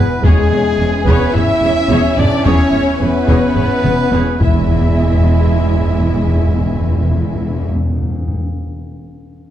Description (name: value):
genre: cinematic, epic orchestral film score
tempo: 108 BPM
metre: 4/4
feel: straight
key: E major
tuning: A4 = 440 Hz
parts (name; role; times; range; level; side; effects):
- rich symphonic violin section; melody; 0.0-7.7 s; G#4 to E5; -25 LUFS; left 2 dB; none
- clear symphonic violin section; second line; 0.0-7.7 s; G#4 to E5; -26 LUFS; left 3 dB; none
- rich symphonic viola section; accompaniment; 0.0-7.7 s; G#3 to C#5; -25 LUFS; equal; none
- clear trombone section; sustained chords; 0.0-7.7 s; E3 to C#4; -24 LUFS; right 2 dB; none
- dark French horn section; sustained chords; 0.0-7.7 s; G#3 to E4; -20 LUFS; left 3 dB; none
- warm symphonic string section; sustained chords; 0.0-7.7 s; B3 to G#5; -26 LUFS; equal; none
- bright trumpet; stabs; 0.0-7.7 s; E4 to E5; -25 LUFS; right 3 dB; none
- rich symphonic cello section; bass; 0.0-7.7 s; E2; -21 LUFS; right 2 dB; none
- rich symphonic double bass section; bass; 0.0-7.7 s; E1; -20 LUFS; right 2 dB; none
- taiko ensemble; drums; 0.2-5.5 s; none; -17 LUFS; left 1 dB; none
- timpani; percussion; 0.2-1.0, 4.4-8.4 s; E2; -18 LUFS; left 1 dB; none
- impact; sound effects; 4.4-8.4 s; none; -27 LUFS; equal; none
room: wet scoring stage reverb, RT60 1.8 s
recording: dark, warm production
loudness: -12 LUFS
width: side -11 dB against mid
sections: 0.0-4.7 A section; 4.7-6.9 B section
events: drum fill 3.9-4.7; impact 4.7-6.9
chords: 0.2 C#m7/E; 4.4 E